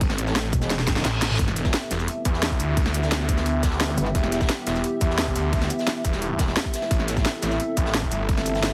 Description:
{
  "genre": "dark technical drum and bass",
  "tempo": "174 BPM",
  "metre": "4/4",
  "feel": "straight",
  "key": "E minor",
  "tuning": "A4 = 442 Hz",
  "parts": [
    { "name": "snarling distorted saw bass", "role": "bass", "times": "0.0-8.7 s", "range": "E1 to E2", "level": "-28 LUFS", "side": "equal", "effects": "distortion, overdrive" },
    { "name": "crunchy breakbeat drum kit", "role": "drums", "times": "0.0-8.7 s", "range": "hi-hat, snare drum", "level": "-38 LUFS", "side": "equal", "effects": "none" },
    { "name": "drum and bass drum kit", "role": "drums", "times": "0.0-8.7 s", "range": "hi-hat, shaker, snare drum, toms", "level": "-29 LUFS", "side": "equal", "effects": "overdrive" },
    { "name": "electronic kick drum", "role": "drums", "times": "0.0-8.4 s", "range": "none", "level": "-26 LUFS", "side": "equal", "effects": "none" },
    { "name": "deep dark ambient pad", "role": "texture", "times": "0.0-8.7 s", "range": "B3 to E5", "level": "-35 LUFS", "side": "equal", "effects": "chorus, built-in reverb, sidechain pumping" },
    { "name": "metallic wobble bass", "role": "bass", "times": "0.5-1.0, 4.0-4.1 s", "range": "E1 to G1", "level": "-27 LUFS", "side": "equal", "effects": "distortion, chorus" },
    { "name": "reverse cymbal and zap", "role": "sound effects", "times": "0.8-1.4, 3.9-4.0 s", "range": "none", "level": "-35 LUFS", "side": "equal", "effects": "none" },
    { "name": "dark analog pad", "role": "sustained chords", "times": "1.4-8.7 s", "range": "B3 to E5", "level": "-32 LUFS", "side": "equal", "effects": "chorus, sidechain pumping" }
  ],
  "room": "light reverb",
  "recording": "heavily compressed radio sound",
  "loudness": "-24 LUFS",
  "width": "mono",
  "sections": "0.0-8.7 A section",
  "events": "drum fill 0.7-1.4; reverse cymbal 0.8-1.4",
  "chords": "0.0 Am; 1.4 Em; 6.9 Am",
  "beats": "| 0.01 0.36 0.70 1.05 | 1.39 1.74 2.08 2.42 | 2.77 3.12 3.46 3.80 | 4.15 4.49 4.84 5.18 | 5.53 5.87 6.22 6.56 | 6.91 7.25 7.60 7.94 | 8.29 8.63"
}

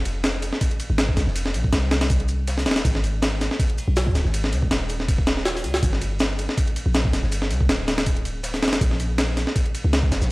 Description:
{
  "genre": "drum and bass, jungle",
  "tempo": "161 BPM",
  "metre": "4/4",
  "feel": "swing 54% on 16ths",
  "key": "F minor",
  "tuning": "A4 = 439 Hz",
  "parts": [
    { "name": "warm 808-style bass", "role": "bass", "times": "0.0-10.3 s", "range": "D1 to Db2", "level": "-24 LUFS", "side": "equal", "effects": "tube saturation" },
    { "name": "breakbeat sampler-style drum kit", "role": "drums", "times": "0.1-10.2 s", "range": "kick drum, ride cymbal, snare drum", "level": "-22 LUFS", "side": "equal", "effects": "none" },
    { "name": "crunchy breakbeat drum kit", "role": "drums", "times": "0.1-10.3 s", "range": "hi-hat, shaker, snare drum", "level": "-37 LUFS", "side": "equal", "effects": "none" }
  ],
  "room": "little or no reverb",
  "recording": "dry, gritty hardware recording, vinyl crackle",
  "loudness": "-20 LUFS",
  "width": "side -22 dB against mid",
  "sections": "0.0-10.3 A section",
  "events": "none",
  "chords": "none",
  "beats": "0.24 0.61 0.99 | 1.36 1.73 2.10 2.48 | 2.85 3.22 3.60 3.97 | 4.34 4.71 5.09 5.46 | 5.83 6.20 6.58 6.95 | 7.32 7.69 8.07 8.44 | 8.81 9.19 9.56 9.93 | 10.30"
}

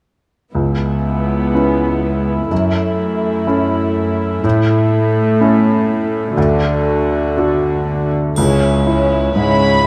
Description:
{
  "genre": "cinematic, emotional film score for orchestra",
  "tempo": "61 BPM",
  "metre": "4/4",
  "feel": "rubato",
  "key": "C# minor",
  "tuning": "A4 = 440 Hz",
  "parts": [
    { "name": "clear baby grand piano", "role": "accompaniment", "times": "0.5-9.9 s", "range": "C#2 to B4", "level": "-19 LUFS", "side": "equal", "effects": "none" },
    { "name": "dark studio viola section", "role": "accompaniment", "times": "0.5-9.9 s", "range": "G#3 to F#4", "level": "-22 LUFS", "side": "equal", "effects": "none" },
    { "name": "warm studio cello section", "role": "bass", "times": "0.5-9.9 s", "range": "C#2 to D3", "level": "-21 LUFS", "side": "equal", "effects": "none" },
    { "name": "dark studio violin section", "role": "second line", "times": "8.4-9.8 s", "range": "E4 to C#5", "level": "-20 LUFS", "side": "equal", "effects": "none" },
    { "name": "triangle", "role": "percussion", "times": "8.4-9.9 s", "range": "none", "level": "-32 LUFS", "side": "equal", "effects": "none" },
    { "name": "warm chamber violin section", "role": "melody", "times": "9.4-9.9 s", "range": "B5", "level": "-18 LUFS", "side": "equal", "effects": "none" }
  ],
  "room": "moderate scoring stage reverb, RT60 1.6 s",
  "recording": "dark, warm production",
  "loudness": "-16 LUFS",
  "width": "mono",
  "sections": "0.5-8.4 A section; 8.4-9.9 B section",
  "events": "none",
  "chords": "0.5 C#m7; 2.5 F#m7; 4.4 A; 6.4 D; 8.4 C#m7",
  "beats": "| 0.54 1.54 2.51 3.48 | 4.44 5.40 6.37 7.36 | 8.37 9.36"
}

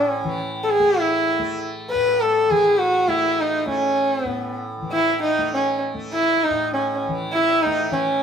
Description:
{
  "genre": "indian classical, Hindustani",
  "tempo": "100 BPM",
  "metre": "7/4",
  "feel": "straight",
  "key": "A raga yaman",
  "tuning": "A4 = 440 Hz",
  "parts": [
    { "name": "rich sarangi", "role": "melody", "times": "0.0-8.2 s", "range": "C#4 to B4", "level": "-18 LUFS", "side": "equal", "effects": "none" },
    { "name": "tanpura", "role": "drone", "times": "0.0-8.2 s", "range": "A2 to A3", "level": "-30 LUFS", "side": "left 1 dB", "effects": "none" }
  ],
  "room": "wet studio reverb, RT60 0.5 s",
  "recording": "band playing live in one room",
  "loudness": "-18 LUFS",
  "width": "side -7 dB against mid",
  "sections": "0.0-7.9 A section",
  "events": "none",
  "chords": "none",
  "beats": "0.08 0.69 1.30 1.90 2.51 3.11 | 3.71 4.32 4.92 5.52 6.12 6.71 7.31 | 7.91"
}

